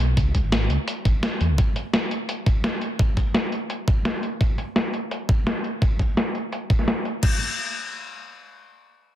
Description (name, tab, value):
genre	liquid drum and bass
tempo	170 BPM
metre	4/4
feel	straight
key	unclear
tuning	A4 = 439 Hz
part	dark detuned saw bass	bass	0.0-1.6 s	G#1 to E2	-21 LUFS	equal	none
part	breakbeat sampler-style drum kit	drums	0.2-7.3 s	crash cymbal, hi-hat, snare drum	-25 LUFS	equal	overdrive, low-pass filter on hats, low-pass filter on snare, low-pass filter on cymbals, low-pass filter on room
part	electronic kick drum	drums	0.2-7.3 s	none	-20 LUFS	equal	overdrive
room	light reverb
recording	dense, heavily limited modern master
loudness	-21 LUFS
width	side -12 dB against mid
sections	0.0-7.2 A section; 7.2-9.2 B section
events	filter sweep on drum 0.0-7.2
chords	none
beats	| 0.17 0.52 0.88 1.23 | 1.58 1.94 2.29 2.64 | 2.99 3.35 3.70 4.05 | 4.41 4.76 5.11 5.46 | 5.82 6.17 6.52 6.88 | 7.23